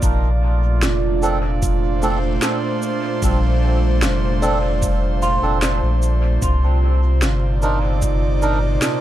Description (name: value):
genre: ambient dub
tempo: 75 BPM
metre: 4/4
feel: straight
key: unclear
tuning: A4 = 440 Hz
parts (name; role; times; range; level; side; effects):
- airy breathy pad; sustained chords; 0.0-9.0 s; Bb2 to D5; -24 LUFS; right 1 dB; chorus
- warm sub bass; bass; 0.0-8.8 s; F1 to C2; -18 LUFS; equal; none
- electronic cabasa and snare drum; drums; 0.0-9.0 s; none; -25 LUFS; equal; dub echo
- electronic kick drum; drums; 0.0-8.2 s; none; -22 LUFS; equal; none
- bubbling stepped-filter texture; texture; 0.0-9.0 s; F4; -28 LUFS; right 10 dB; chorus, built-in reverb
- melodica; stabs; 1.2-8.6 s; C4 to Bb4; -26 LUFS; right 2 dB; dub echo
- buzzing kalimba; arpeggios; 2.0-8.3 s; G3 to C6; -27 LUFS; equal; dub echo
room: light reverb, digital ambience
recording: none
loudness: -16 LUFS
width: side -13 dB against mid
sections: 0.0-9.0 A section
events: none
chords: 0.0 Bbmaj9; 6.4 Cm9